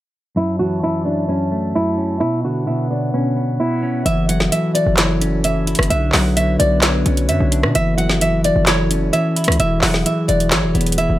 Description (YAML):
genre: hip hop, trap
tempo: 130 BPM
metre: 4/4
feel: half-time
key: F# minor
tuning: A4 = 439 Hz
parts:
  - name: nylon-string guitar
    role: melody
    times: 0.4-11.2 s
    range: C#4 to F#5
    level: -20 LUFS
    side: right 1 dB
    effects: digital delay
  - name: clean electric guitar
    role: accompaniment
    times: 0.4-11.2 s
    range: F#2 to E4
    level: -20 LUFS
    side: equal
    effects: none
  - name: glass harmonica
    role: sustained chords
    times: 0.4-11.2 s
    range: B3 to A5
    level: -28 LUFS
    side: left 2 dB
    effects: none
  - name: hard-hitting 808-style bass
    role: bass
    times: 4.1-11.2 s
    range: E1 to B2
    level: -19 LUFS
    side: equal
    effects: none
  - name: trap drum kit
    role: drums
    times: 4.1-11.1 s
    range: handclaps, hi-hat, rim click, snare drum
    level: -18 LUFS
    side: equal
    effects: none
room: studio reverb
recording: low-pass filter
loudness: -15 LUFS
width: side -15 dB against mid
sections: 0.4-4.1 A section; 4.1-11.2 B section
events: filter sweep 0.4-4.1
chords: 0.4 F#m7; 2.2 Bmadd9; 4.1 F#m7; 5.9 Bmadd9; 7.7 F#m7; 9.6 Eadd9